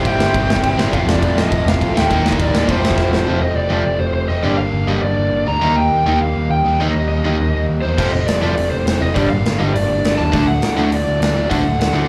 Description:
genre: punk rock.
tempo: 204 BPM.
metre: 4/4.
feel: straight.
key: unclear.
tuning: A4 = 440 Hz.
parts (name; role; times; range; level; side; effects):
lead guitar through a small cranked amp; melody; 0.0-12.1 s; C5 to Bb5; -23 LUFS; equal; overdrive, slapback echo.
biting overdriven guitar; riff; 0.0-12.1 s; F2 to Bb4; -26 LUFS; equal; slapback echo.
overdriven electric guitar; riff; 0.0-12.1 s; F2 to Eb4; -24 LUFS; equal; slapback echo.
raw garage guitar; riff; 0.0-12.1 s; F2 to Eb4; -26 LUFS; equal; overdrive, slapback echo.
vintage muted picked electric bass; bass; 0.1-12.0 s; F1 to E2; -22 LUFS; equal; none.
big rock drum kit; drums; 0.1-3.2, 8.0-11.9 s; crash cymbal, hi-hat, kick drum, snare drum; -22 LUFS; equal; none.
room: light reverb.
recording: live gig heard through the venue's PA, club reverb.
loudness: -17 LUFS.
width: mono.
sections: 0.0-3.3 A section; 3.3-12.1 B section.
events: drum fill 3.0; half time 3.3-12.1.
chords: 0.0 Cm/G; 0.9 F; 2.1 Eb; 2.7 F; 4.5 Gm; 5.6 Eb; 8.0 F; 9.2 Gm; 10.3 D.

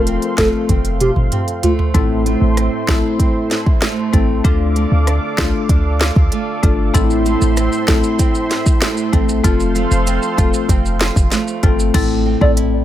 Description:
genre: dancehall.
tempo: 96 BPM.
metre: 4/4.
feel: straight.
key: A minor.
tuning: A4 = 437 Hz.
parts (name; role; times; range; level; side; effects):
marimba with medium mallets; accompaniment; 0.0-12.8 s; A3 to A4; -21 LUFS; left 9 dB; sidechain pumping.
warm analog pad; sustained chords; 0.0-11.9 s; A4 to D6; -25 LUFS; right 1 dB; chorus, sidechain pumping.
flamenco guitar; arpeggios; 0.0-12.8 s; A2 to F4; -22 LUFS; right 6 dB; ping-pong delay.
clean 808-style bass; bass; 0.0-12.8 s; E1 to D2; -17 LUFS; equal; none.
afro-pop drum kit; drums; 0.1-12.7 s; crash cymbal, hi-hat, kick drum, rim click, snare drum, toms; -16 LUFS; equal; none.
hollow clarinet-like synth lead; melody; 0.4-1.7, 12.4-12.5 s; F4 to D5; -20 LUFS; right 1 dB; chorus, ping-pong delay.
maracas; percussion; 6.9-11.9 s; none; -29 LUFS; right 2 dB; none.
room: little or no reverb.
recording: none.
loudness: -13 LUFS.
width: side -12 dB against mid.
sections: 0.0-1.9 A section; 1.9-11.9 B section.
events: drum fill 0.7-1.9.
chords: 0.0 F; 1.9 Am; 4.4 Dm; 6.9 Am; 9.4 F; 11.9 Am.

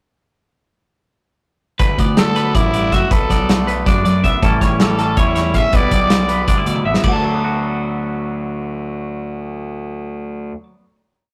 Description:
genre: math rock and midwest emo.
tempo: 320 BPM (eighths).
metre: 7/8.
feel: straight.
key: D major.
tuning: A4 = 440 Hz.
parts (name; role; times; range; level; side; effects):
twangy electric guitar; accompaniment; 1.8-11.0 s; D2 to F#4; -26 LUFS; equal; none.
twelve-string electric guitar; arpeggios; 1.8-10.6 s; A4 to D6; -24 LUFS; equal; none.
fuzz picked electric bass; bass; 1.8-10.5 s; A1 to F#2; -24 LUFS; equal; overdrive.
loose indie drum kit; drums; 1.8-7.1 s; crash cymbal, hi-hat, kick drum, snare drum, toms; -20 LUFS; equal; none.
growling trumpet; melody; 2.2-6.5 s; E4 to E5; -22 LUFS; equal; none.
room: light reverb.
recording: rough rehearsal-room recording, tube saturation.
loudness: -16 LUFS.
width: mono.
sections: 1.8-7.0 A section; 7.0-9.7 final chord.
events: drum fill 6.8.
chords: 1.8 D6; 3.1 Bm7; 4.4 A7; 5.7 G6/B; 7.0 D6.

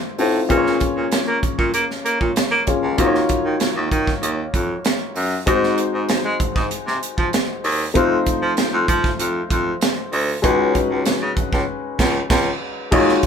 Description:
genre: polished 1980s jazz-funk pop.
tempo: 97 BPM.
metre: 4/4.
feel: straight.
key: unclear.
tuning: A4 = 440 Hz.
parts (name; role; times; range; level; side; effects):
warm concert grand piano; accompaniment; 0.0-13.3 s; G#3 to C#5; -21 LUFS; left 3 dB; none.
clear baritone saxophone; bass; 0.2-13.1 s; C#2 to A#3; -20 LUFS; right 1 dB; none.
crisp fusion drum kit; drums; 0.2-13.3 s; crash cymbal, hi-hat, kick drum, snare drum; -22 LUFS; right 1 dB; none.
room: moderate studio reverb, RT60 0.5 s.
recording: band playing live in one room.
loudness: -17 LUFS.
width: side -7 dB against mid.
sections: 0.0-12.9 A section.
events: band accent 11.7-12.9.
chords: 0.0 F7; 0.5 A#m7; 3.0 D#m9; 5.5 G#7; 8.0 F7; 10.4 C#9sus4.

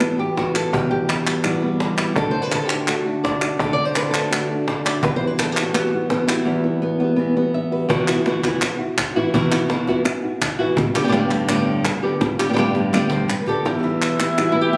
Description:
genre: flamenco.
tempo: 167 BPM.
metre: 4/4.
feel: straight.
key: E minor.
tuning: A4 = 441 Hz.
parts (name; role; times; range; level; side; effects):
flamenco guitar; melody; 0.0-14.8 s; E2 to E5; -22 LUFS; equal; none.
flamenco guitar; stabs; 0.0-14.8 s; E2 to G4; -29 LUFS; equal; none.
palmas hand claps; percussion; 0.0-14.6 s; none; -27 LUFS; equal; none.
cajon; percussion; 0.4-13.6 s; none; -29 LUFS; equal; none.
bright reedy baroque flute; second line; 13.7-14.8 s; E4; -24 LUFS; equal; none.
room: moderate large studio reverb, RT60 1.3 s.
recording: recorded on a phone in the room, club reverb.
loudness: -20 LUFS.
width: mono.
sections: 0.0-7.9 A section; 7.9-13.7 B section; 13.7-14.8 C section.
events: drum fill 12.8-13.7.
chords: 0.0 Emadd9; 2.2 D; 5.0 Emadd9; 7.9 Esus2; 10.8 Gadd9; 13.7 Em.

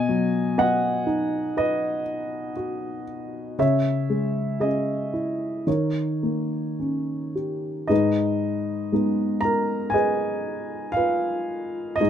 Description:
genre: classical, lyrical solo piano.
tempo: 51-62 BPM.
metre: 4/4.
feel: rubato.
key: G# dorian from 7.9 s.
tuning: A4 = 440 Hz.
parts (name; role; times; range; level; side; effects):
dark upright piano; solo; 0.0-12.1 s; G#2 to A#5; -22 LUFS; equal; none.
room: light reverb.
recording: close, detailed microphones.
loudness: -22 LUFS.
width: side -9 dB against mid.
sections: 0.0-7.9 A section; 7.9-12.1 B section.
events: none.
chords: 0.0 B; 3.6 C#m; 5.7 D#7; 7.9 G#m.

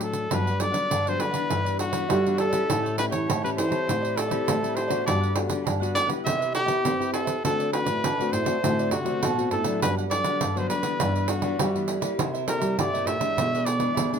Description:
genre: samba and choro.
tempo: 101 BPM.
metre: 4/4.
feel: straight.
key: G major.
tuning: A4 = 435 Hz.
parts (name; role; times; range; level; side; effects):
warm trumpet; melody; 0.0-14.2 s; F#4 to E5; -27 LUFS; left 1 dB; none.
nylon-string guitar; accompaniment; 0.0-14.2 s; G2 to G4; -31 LUFS; left 7 dB; none.
pandeiro; percussion; 0.0-14.2 s; none; -29 LUFS; right 4 dB; none.
cavaquinho; accompaniment; 0.3-14.2 s; D4 to G5; -32 LUFS; right 5 dB; none.
nylon-string guitar; bass; 0.3-14.2 s; G2 to C4; -29 LUFS; right 1 dB; none.
room: moderate studio ambience, RT60 0.5 s.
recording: minimal, uncompressed stereo recording.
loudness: -22 LUFS.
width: side -7 dB against mid.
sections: 0.3-14.2 A section.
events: none.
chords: 0.3 Gmaj7; 1.5 Em7/G; 2.7 A7; 3.9 D9sus4/A; 5.1 Gmaj7; 6.3 Cmaj7; 7.4 D7; 9.8 Gmaj7; 11.0 Em7/G; 12.2 C7; 13.4 E7/B.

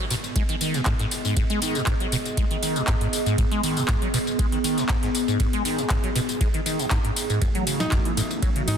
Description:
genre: acid house.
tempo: 119 BPM.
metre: 4/4.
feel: straight.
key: G# phrygian.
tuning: A4 = 445 Hz.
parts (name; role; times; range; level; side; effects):
liquid acid bass; riff; 0.0-8.8 s; F#2 to G#3; -26 LUFS; equal; phaser, tube saturation, wide subtle chorus, vintage 12-bit sampler grit, dub echo.
warbly tape-like pad; texture; 0.2-8.8 s; B3 to E5; -28 LUFS; right 1 dB; chorus, built-in reverb, phaser, sidechain pumping.
booming analog drum machine; drums; 0.1-8.8 s; handclaps, hi-hat, snare drum, tambourine; -29 LUFS; left 1 dB; none.
dusty soul sampler-style drum kit; drums; 0.1-8.8 s; ride cymbal, snare drum; -39 LUFS; right 6 dB; overdrive, high-pass filter on cymbals, high-pass filter on snare.
electronic kick drum; drums; 0.4-8.5 s; none; -25 LUFS; equal; none.
warm analog pad; sustained chords; 7.4-8.8 s; E3 to F#4; -30 LUFS; right 3 dB; chorus, sidechain pumping.
clear alto saxophone; melody; 7.8-8.8 s; D#4; -30 LUFS; right 1 dB; dub echo.
room: moderate lush hall reverb, RT60 2.3 s.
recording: dense, heavily limited modern master.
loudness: -21 LUFS.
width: side -8 dB against mid.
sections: 0.0-8.8 A section.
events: none.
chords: 0.0 G#m; 7.4 F#m7.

